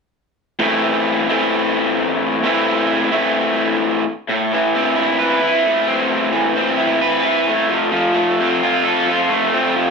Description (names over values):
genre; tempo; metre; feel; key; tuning
rock; 131 BPM; 4/4; straight; A minor; A4 = 441 Hz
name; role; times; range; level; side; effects
raw garage guitar; solo; 0.6-9.9 s; A2 to B4; -14 LUFS; equal; overdrive, slapback echo
room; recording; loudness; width
moderate studio reverb, RT60 0.6 s; none; -15 LUFS; side -4 dB against mid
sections
0.6-4.3 A section; 4.3-9.9 B section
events
none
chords
0.6 Am; 4.0 N.C.; 4.3 Amadd9; 7.7 F